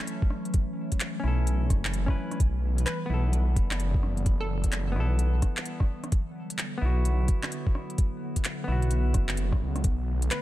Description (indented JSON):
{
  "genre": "future garage",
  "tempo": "129 BPM",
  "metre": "4/4",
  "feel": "swing 63% on 16ths",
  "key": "unclear",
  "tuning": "A4 = 440 Hz",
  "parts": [
    { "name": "semi-hollow electric guitar", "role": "accompaniment", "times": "0.0-9.5 s", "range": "B3 to B4", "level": "-38 LUFS", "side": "left 1 dB", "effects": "sidechain pumping, tape echo" },
    { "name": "warbly tape-like pad", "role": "sustained chords", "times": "0.0-10.4 s", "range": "D3 to B3", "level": "-35 LUFS", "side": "equal", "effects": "chorus, built-in reverb, vintage 12-bit sampler grit, sidechain pumping" },
    { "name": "organic electronic drum kit", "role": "drums", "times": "0.1-10.4 s", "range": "handclaps, hi-hat, rim click", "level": "-34 LUFS", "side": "equal", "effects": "none" },
    { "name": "electronic kick drum", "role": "drums", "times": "0.2-10.0 s", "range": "none", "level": "-25 LUFS", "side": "equal", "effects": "none" },
    { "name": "swelling detuned saw bass", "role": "bass", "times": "1.2-10.3 s", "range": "F#1 to C#2", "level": "-26 LUFS", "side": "equal", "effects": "sidechain pumping" },
    { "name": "hollow square pluck", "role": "melody", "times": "2.9-4.9, 10.3-10.4 s", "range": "A4 to B4", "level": "-38 LUFS", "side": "left 1 dB", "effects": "chorus, tape echo" }
  ],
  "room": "digital ambience",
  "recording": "none",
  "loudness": "-25 LUFS",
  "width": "side -15 dB against mid",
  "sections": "0.0-10.4 A section",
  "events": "none",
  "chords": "0.0 F#m7; 2.4 G6; 6.1 D6/B; 9.8 Bm7"
}